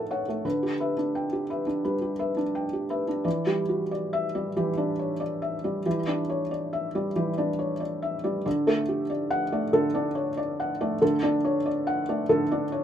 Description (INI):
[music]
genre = neoclassical minimalist piano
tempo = 93 BPM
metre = 4/4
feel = rubato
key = unclear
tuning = A4 = 440 Hz
[part]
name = felt-muted upright piano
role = solo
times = 0.0-12.8 s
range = D3 to A5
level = -24 LUFS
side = equal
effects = none
[sound]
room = light reverb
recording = minimal, uncompressed stereo recording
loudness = -24 LUFS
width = side -9 dB against mid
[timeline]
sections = 0.0-3.3 A section; 3.3-12.8 B section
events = none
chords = 0.4 G6/D; 3.3 Em7; 8.5 D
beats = | 0.45 1.16 1.85 2.55 | 3.25 3.92 4.56 5.21 | 5.86 6.50 7.15 7.80 | 8.45 9.09 9.73 10.37 | 11.01 11.65 12.30